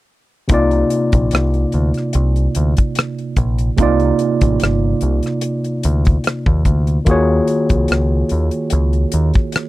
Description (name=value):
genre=R&B, neo-soul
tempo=73 BPM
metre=4/4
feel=swing 54% on 16ths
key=unclear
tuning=A4 = 440 Hz
part: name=barky tine electric piano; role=accompaniment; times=0.5-9.7 s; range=C3 to D5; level=-18 LUFS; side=moving between left 2 dB and right 6 dB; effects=overdrive, auto-pan
part: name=deep dub picked electric bass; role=bass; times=0.5-9.3 s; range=G1 to Eb2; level=-16 LUFS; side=equal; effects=none
part: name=damped 70s drum kit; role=drums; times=0.5-9.7 s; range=hi-hat, kick drum, rim click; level=-17 LUFS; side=equal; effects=none
room=little or no reverb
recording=dry, close 1970s-style studio recording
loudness=-14 LUFS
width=side -17 dB against mid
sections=0.5-9.7 A section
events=none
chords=0.5 Cm11; 7.1 Ebm11